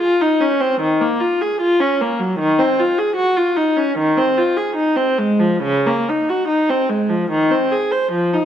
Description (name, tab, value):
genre	classical, baroque-style suite movement for unaccompanied viola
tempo	65-77 BPM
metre	4/4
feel	rubato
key	unclear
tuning	A4 = 440 Hz
part	warm viola	solo	0.0-8.4 s	Db3 to C5	-15 LUFS	equal	none
room	moderate recital hall reverb, RT60 1.3 s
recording	dark, warm production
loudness	-15 LUFS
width	side -9 dB against mid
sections	0.0-8.4 A section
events	none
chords	none